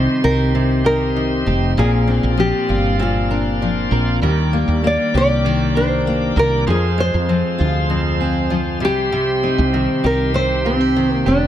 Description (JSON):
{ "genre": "acoustic pop", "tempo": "98 BPM", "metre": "4/4", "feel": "straight", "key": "unclear", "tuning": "A4 = 439 Hz", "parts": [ { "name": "nylon-string guitar", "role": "melody", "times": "0.0-11.5 s", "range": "C4 to D5", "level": "-20 LUFS", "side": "equal", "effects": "none" }, { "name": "fingerpicked steel-string acoustic guitar", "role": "accompaniment", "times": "0.0-11.5 s", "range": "F2 to G4", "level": "-20 LUFS", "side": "left 3 dB", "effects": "none" }, { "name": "bright tonewheel organ", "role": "sustained chords", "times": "0.0-11.5 s", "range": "G4 to D6", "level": "-26 LUFS", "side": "equal", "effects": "slow rotary speaker" }, { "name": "direct-recorded clean electric guitar", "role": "arpeggios", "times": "0.0-11.5 s", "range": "F3 to Bb4", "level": "-26 LUFS", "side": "right 9 dB", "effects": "ping-pong delay" }, { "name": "woody fretless electric bass", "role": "bass", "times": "0.0-11.5 s", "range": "F1 to F2", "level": "-19 LUFS", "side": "right 1 dB", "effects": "ensemble chorus" } ], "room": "light reverb, small room ambience", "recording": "none", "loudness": "-15 LUFS", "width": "side -11 dB against mid", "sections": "0.0-11.5 A section", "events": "none", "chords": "0.0 Cm; 1.8 Bbadd9; 4.2 Ebmaj7; 6.7 Fm; 8.8 Cm" }